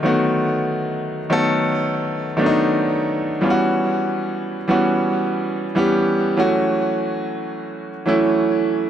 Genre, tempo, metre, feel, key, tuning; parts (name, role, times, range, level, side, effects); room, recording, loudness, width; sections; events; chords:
R&B; 71 BPM; 4/4; swing 54% on 16ths; E dorian; A4 = 440 Hz
bright concert grand piano; solo; 0.0-8.9 s; D3 to A4; -17 LUFS; equal; digital delay
light reverb, small room ambience; -17 LUFS; side -9 dB against mid
0.0-8.9 A section
grand piano fill 8.5-8.9
0.0 B7; 3.4 Em69; 6.4 F#m7